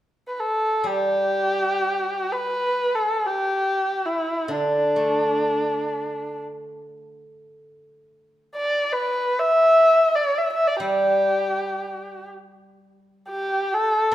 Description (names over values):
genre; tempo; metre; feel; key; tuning
chinese traditional, Chinese chamber ensemble; free time; none; none; G gong mode; A4 = 439 Hz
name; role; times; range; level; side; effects
dark erhu; melody; 0.3-14.1 s; D4 to E5; -20 LUFS; equal; none
steel-string zither; accompaniment; 0.8-14.1 s; B2 to A3; -24 LUFS; right 1 dB; none
room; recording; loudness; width
wet recital hall reverb, RT60 1.4 s; minimal, uncompressed stereo recording; -19 LUFS; side -13 dB against mid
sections
0.0-14.1 A section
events
none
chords
none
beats
free time